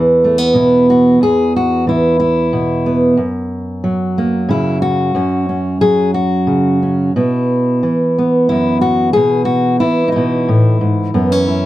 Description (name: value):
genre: folk, solo fingerstyle acoustic guitar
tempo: 60 BPM (dotted quarters)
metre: 6/8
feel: rubato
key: E major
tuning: A4 = 439 Hz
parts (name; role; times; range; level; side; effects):
- fingerpicked steel-string acoustic guitar; solo; 0.0-11.7 s; E2 to G#4; -12 LUFS; equal; none
room: little or no reverb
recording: close, detailed microphones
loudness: -12 LUFS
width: side -15 dB against mid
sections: 0.0-11.7 A section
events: none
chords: 0.0 E; 3.2 F#; 7.2 Bsus4; 11.1 F#7(no3)